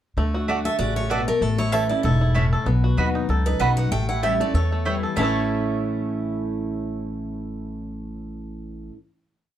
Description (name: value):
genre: bluegrass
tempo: 192 BPM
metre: 4/4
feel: swing 55% on 8ths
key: A major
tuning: A4 = 440 Hz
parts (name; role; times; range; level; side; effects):
- picked steel-string acoustic guitar; accompaniment; 0.2-8.9 s; E2 to F#4; -28 LUFS; left 2 dB; none
- bluegrass banjo; arpeggios; 0.2-8.9 s; A3 to A4; -29 LUFS; equal; none
- upright bass; bass; 0.2-8.9 s; E1 to E2; -24 LUFS; equal; none
- mandolin; stabs; 0.5-8.9 s; A3 to B5; -27 LUFS; right 5 dB; none
- picked steel-string acoustic guitar; melody; 0.7-8.9 s; A4 to G5; -26 LUFS; right 2 dB; plate reverb
room: light reverb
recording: dark, warm production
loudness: -20 LUFS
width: side -11 dB against mid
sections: 0.2-5.2 A section; 5.2-7.7 final chord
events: none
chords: 0.2 D; 1.4 A; 2.7 B; 3.9 A7; 5.2 A